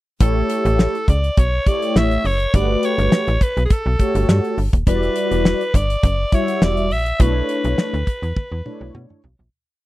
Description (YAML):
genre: early-eighties boogie funk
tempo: 103 BPM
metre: 4/4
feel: straight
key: B minor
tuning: A4 = 441 Hz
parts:
  - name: raspy alto saxophone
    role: melody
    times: 0.2-9.0 s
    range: G#4 to E5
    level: -23 LUFS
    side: equal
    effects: slapback echo
  - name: mellow synth brass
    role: accompaniment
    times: 0.2-9.2 s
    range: G3 to E5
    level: -22 LUFS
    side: left 1 dB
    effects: chorus
  - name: slap-like FM bass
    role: bass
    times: 0.2-9.5 s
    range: D#1 to B2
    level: -19 LUFS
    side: equal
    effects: none
  - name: damped 70s drum kit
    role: drums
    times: 0.2-9.5 s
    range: hi-hat, kick drum, snare drum, toms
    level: -16 LUFS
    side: equal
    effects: none
room: little or no reverb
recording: dry, close 1970s-style studio recording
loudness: -16 LUFS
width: side -16 dB against mid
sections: 0.2-9.5 verse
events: fade-out 7.2-9.5; drum fill 8.4-9.5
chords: 0.2 A7; 2.5 Gmaj9; 4.9 Em9; 7.2 Bm11